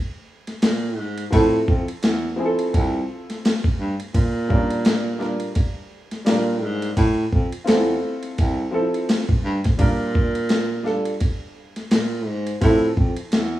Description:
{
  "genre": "hip hop, jazz-hop",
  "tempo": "85 BPM",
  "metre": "4/4",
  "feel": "swing 57% on 16ths",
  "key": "F major",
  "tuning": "A4 = 441 Hz",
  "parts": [
    { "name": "dusty soul sampler-style drum kit", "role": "drums", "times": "0.5-13.5 s", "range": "hi-hat, kick drum, ride cymbal, snare drum", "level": "-21 LUFS", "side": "equal", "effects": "overdrive" },
    { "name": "warm baritone saxophone", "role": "bass", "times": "0.6-13.6 s", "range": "C2 to Bb2", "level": "-23 LUFS", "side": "right 1 dB", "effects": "none" },
    { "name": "warm grand piano", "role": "accompaniment", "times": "1.3-12.9 s", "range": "F3 to Bb4", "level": "-23 LUFS", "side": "equal", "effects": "none" }
  ],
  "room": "light reverb, studio reverb",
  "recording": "rough home demo mix, vinyl crackle, small room ambience",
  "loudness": "-19 LUFS",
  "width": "side -14 dB against mid",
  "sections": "0.0-13.6 A section",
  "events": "none",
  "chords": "0.0 N.C.; 1.3 Fmaj7; 4.1 Bb6; 7.0 Fmaj7; 9.8 Bb6; 12.6 Fmaj7"
}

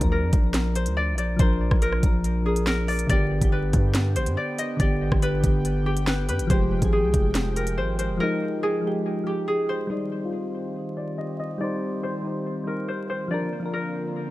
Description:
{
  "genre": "hip hop, drill",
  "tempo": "141 BPM",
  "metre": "4/4",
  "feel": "half-time",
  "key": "C minor",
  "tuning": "A4 = 440 Hz",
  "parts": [
    { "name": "concert harp", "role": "melody", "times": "0.0-14.3 s", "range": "G4 to Eb5", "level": "-29 LUFS", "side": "left 1 dB", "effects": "low-pass filter, tape echo" },
    { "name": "soft electric-piano-like synth keys", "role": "accompaniment", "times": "0.0-14.3 s", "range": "D3 to C5", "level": "-28 LUFS", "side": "left 1 dB", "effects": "chorus, low-pass filter, tape echo" },
    { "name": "hard-hitting 808-style bass", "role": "bass", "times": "0.0-8.2 s", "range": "F1 to G2", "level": "-25 LUFS", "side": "equal", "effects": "none" },
    { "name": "drill drum kit", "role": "drums", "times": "0.0-8.1 s", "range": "hi-hat, kick drum, rim click, snare drum", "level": "-23 LUFS", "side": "equal", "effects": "none" },
    { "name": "warm analog pad", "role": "sustained chords", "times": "3.1-14.3 s", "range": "D3 to G5", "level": "-34 LUFS", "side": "right 1 dB", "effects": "chorus, low-pass filter" },
    { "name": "swell", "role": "sound effects", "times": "13.7-14.3 s", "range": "none", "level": "-44 LUFS", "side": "right 3 dB", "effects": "none" }
  ],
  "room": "digital ambience",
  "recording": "echo-heavy mix, vinyl crackle",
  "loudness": "-22 LUFS",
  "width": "side -17 dB against mid",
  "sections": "0.0-9.9 A section; 9.9-14.3 B section",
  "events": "break 8.2-9.9; filter sweep 9.9-14.3; swell 13.7-14.3",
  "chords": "0.0 Bb; 3.1 G; 6.5 Fmadd9; 9.9 Cm; 13.3 Bb"
}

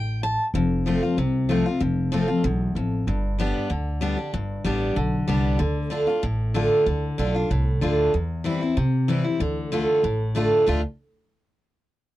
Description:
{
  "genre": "bluegrass",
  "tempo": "189 BPM",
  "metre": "4/4",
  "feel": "straight",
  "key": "D dorian",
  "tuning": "A4 = 440 Hz",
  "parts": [
    { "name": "picked steel-string acoustic guitar", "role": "accompaniment", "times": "0.0-10.8 s", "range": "E2 to A5", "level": "-22 LUFS", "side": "left 1 dB", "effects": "none" },
    { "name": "upright bass", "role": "bass", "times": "0.0-10.8 s", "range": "F1 to C3", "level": "-25 LUFS", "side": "right 1 dB", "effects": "none" }
  ],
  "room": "moderate booth ambience, RT60 0.2 s",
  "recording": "dry, close 1970s-style studio recording",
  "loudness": "-21 LUFS",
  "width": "side -15 dB against mid",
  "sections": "0.5-10.7 A section; 10.7-11.9 B section",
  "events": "none",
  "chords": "0.0 N.C.; 0.5 F; 3.1 G; 5.6 Dm; 8.1 C/E; 9.4 Dm"
}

